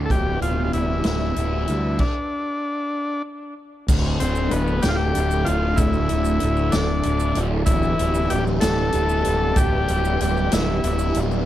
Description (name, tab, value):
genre	psychedelic rock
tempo	63 BPM (dotted quarters)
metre	6/8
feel	straight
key	unclear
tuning	A4 = 436 Hz
part	string machine, cellos	sustained chords	0.0-11.5 s	G4 to E5	-32 LUFS	right 5 dB	ensemble chorus
part	fuzz guitar	riff	0.0-11.5 s	D2 to E4	-26 LUFS	left 1 dB	distortion, phaser
part	fuzz fingered electric bass	bass	0.0-11.4 s	D1 to D2	-22 LUFS	equal	overdrive
part	combo organ	melody	0.1-11.2 s	B3 to A4	-24 LUFS	left 2 dB	analog delay
part	vintage drum kit	drums	0.1-11.3 s	crash cymbal, hi-hat, kick drum, snare drum	-24 LUFS	equal	none
part	maracas	percussion	3.9-11.4 s	none	-37 LUFS	right 12 dB	none
room	small room ambience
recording	none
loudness	-19 LUFS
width	side -12 dB against mid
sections	0.0-3.9 A section; 3.9-11.5 B section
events	stop 2.0-3.9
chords	0.1 Em7/D; 3.9 Dsus2; 7.7 Em7/D